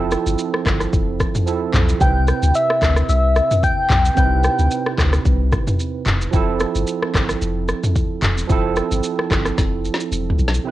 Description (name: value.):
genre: afrobeats.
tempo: 111 BPM.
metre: 4/4.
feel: swing 55% on 16ths.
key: unclear.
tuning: A4 = 437 Hz.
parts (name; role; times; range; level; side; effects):
barky tine electric piano; accompaniment; 0.0-10.7 s; C3 to B4; -23 LUFS; right 7 dB; analog chorus.
punchy sub bass; bass; 0.0-10.6 s; E1 to D2; -19 LUFS; left 1 dB; none.
deep house drum kit; drums; 0.1-10.7 s; handclaps, kick drum, rim click, shaker, snare drum, toms; -20 LUFS; left 1 dB; cassette tape.
soft struck synth lead; melody; 2.0-4.9 s; E5 to G5; -19 LUFS; left 1 dB; chorus.
room: little or no reverb.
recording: home recording on cassette.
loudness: -16 LUFS.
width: side -15 dB against mid.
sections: 0.0-10.7 A section.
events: drum fill 9.6-10.7.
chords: 0.0 Fmaj7; 2.0 Cmaj7; 6.3 Fmaj7.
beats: 0.39 0.93 1.47 | 2.01 2.55 3.09 3.63 | 4.17 4.71 5.25 5.79 | 6.33 6.88 7.42 7.96 | 8.50 9.04 9.58 10.12 | 10.66.